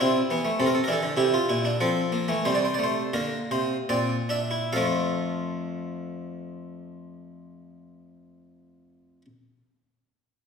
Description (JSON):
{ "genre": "classical, baroque-style 3-part fugue for harpsichord", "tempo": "69-105 BPM", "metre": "3/4", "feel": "straight", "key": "F major", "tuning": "A4 = 439 Hz", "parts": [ { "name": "harpsichord", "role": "solo", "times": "0.0-9.3 s", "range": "F2 to F5", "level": "-24 LUFS", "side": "equal", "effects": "none" } ], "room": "wet recital hall reverb, RT60 1.4 s", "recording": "heard from further back in the room", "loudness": "-23 LUFS", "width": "side -6 dB against mid", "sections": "0.0-4.7 A section; 4.7-9.9 B section", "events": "slowing down 0.0-4.7", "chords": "0.0 C; 0.6 C7; 1.8 F; 2.4 C7; 4.7 F" }